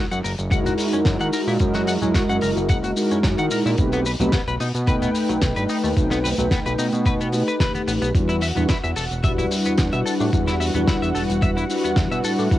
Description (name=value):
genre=nu-disco, nu disco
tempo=110 BPM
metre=4/4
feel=straight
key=E minor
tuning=A4 = 440 Hz
part: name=direct-recorded clean electric guitar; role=riff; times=0.0-12.4 s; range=F#3 to F#5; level=-28 LUFS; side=left 2 dB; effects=analog chorus, analog delay
part: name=fat analog bass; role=bass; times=0.1-12.6 s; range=E1 to D#3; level=-25 LUFS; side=equal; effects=none
part: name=damped 70s drum kit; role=drums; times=0.1-12.6 s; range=hi-hat, shaker, snare drum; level=-27 LUFS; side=left 1 dB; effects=small room ambience
part: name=bongos and congas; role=percussion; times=0.1-12.3 s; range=none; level=-34 LUFS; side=right 2 dB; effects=none
part: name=mellow synth brass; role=accompaniment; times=0.5-12.6 s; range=G3 to G5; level=-22 LUFS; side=equal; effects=chorus, sidechain pumping, analog delay
part: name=electronic kick drum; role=drums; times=0.5-12.6 s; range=none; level=-22 LUFS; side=equal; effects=overdrive, small room ambience
part: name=lush unison pad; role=sustained chords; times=8.2-12.6 s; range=F#4 to F#5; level=-31 LUFS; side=right 1 dB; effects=chorus, sidechain pumping
room=light reverb, small room ambience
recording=home recording on cassette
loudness=-18 LUFS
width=side -14 dB against mid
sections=0.0-12.6 A section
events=none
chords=0.0 F#13; 3.8 B7b9b13; 8.2 Em9